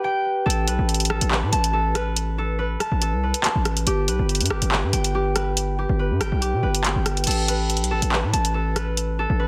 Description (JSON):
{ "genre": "hip hop, drill", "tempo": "141 BPM", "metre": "4/4", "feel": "half-time", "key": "unclear", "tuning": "A4 = 438 Hz", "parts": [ { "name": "concert harp", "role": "arpeggios", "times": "0.0-9.5 s", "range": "G4 to A5", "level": "-28 LUFS", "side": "equal", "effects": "digital delay" }, { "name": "distorted 808-style bass", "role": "bass", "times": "0.5-9.5 s", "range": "G1 to B2", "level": "-25 LUFS", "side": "equal", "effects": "distortion" }, { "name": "drill drum kit", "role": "drums", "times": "0.5-9.1 s", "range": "crash cymbal, handclaps, hi-hat, rim click", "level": "-27 LUFS", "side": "equal", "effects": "none" } ], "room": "light reverb", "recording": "dense, heavily limited modern master", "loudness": "-22 LUFS", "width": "mono", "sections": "0.0-7.3 A section; 7.3-9.5 B section", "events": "break 0.0-0.5", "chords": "0.5 Asus2; 3.9 G; 7.3 Asus2" }